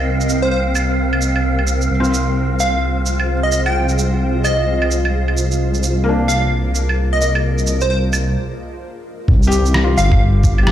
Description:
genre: future garage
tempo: 130 BPM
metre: 4/4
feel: swing 61% on 16ths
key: unclear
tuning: A4 = 440 Hz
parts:
  - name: felt-muted upright piano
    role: accompaniment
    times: 0.0-10.7 s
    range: Bb3 to G4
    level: -24 LUFS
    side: left 3 dB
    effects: sidechain pumping, ping-pong delay
  - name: granular cloud pad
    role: sustained chords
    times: 0.0-10.7 s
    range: C4 to G5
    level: -24 LUFS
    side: equal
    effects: built-in reverb, sidechain pumping
  - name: dark detuned saw bass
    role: bass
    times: 0.0-10.7 s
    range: G1 to C2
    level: -17 LUFS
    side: equal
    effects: sidechain pumping
  - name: wind-like tuned noise texture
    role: texture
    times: 0.0-10.7 s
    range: F5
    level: -28 LUFS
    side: right 2 dB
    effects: built-in reverb
  - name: electronic shaker, claves and rim click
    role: drums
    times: 0.2-10.7 s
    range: none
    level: -23 LUFS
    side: right 3 dB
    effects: none
  - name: plucky unison lead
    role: melody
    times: 0.4-10.2 s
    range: C5 to G5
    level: -22 LUFS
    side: equal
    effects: dub echo
  - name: electronic kick drum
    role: drums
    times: 9.3-10.6 s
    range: none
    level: -13 LUFS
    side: equal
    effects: none
room: light reverb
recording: played on a big sound system in a bare room, large studio reverb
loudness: -14 LUFS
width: side -11 dB against mid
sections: 0.0-9.3 A section; 9.3-10.7 B section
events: filter sweep on ambient pad 0.0-9.3; break 8.4-9.3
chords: 0.0 Cm9; 1.9 Fm/C; 9.3 C7(no3)

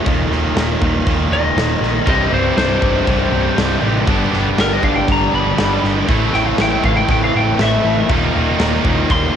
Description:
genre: hard rock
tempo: 120 BPM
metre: 4/4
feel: straight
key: unclear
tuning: A4 = 437 Hz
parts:
  - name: lightly driven lead guitar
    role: melody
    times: 0.0-9.4 s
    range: Bb4 to C6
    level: -20 LUFS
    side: left 2 dB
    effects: cassette tape, analog delay
  - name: overdriven tonewheel organ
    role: sustained chords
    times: 0.0-9.4 s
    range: G3 to F5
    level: -29 LUFS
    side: left 2 dB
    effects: none
  - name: distorted electric guitar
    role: riff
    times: 0.0-9.4 s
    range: C2 to A3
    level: -23 LUFS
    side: left 11 dB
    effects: overdrive, cassette tape
  - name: heavy high-gain guitar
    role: riff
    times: 0.0-9.4 s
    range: C2 to A3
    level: -21 LUFS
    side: right 9 dB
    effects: distortion, cassette tape
  - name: overdriven picked electric bass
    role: bass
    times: 0.1-9.3 s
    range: C1 to Bb1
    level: -21 LUFS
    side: equal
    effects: none
  - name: huge arena drum kit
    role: drums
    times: 0.1-9.2 s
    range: crash cymbal, kick drum, snare drum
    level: -20 LUFS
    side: equal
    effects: cassette tape
  - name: tight distorted guitar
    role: riff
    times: 2.1-9.4 s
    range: C2 to A4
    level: -21 LUFS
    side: right 1 dB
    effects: distortion, cassette tape
room: little or no reverb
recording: home recording on cassette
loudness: -13 LUFS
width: side -8 dB against mid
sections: 0.0-9.4 A section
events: lead electric guitar solo 0.0-9.4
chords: 0.1 Eb5; 2.1 C; 4.1 G; 6.1 Am; 8.1 Eb

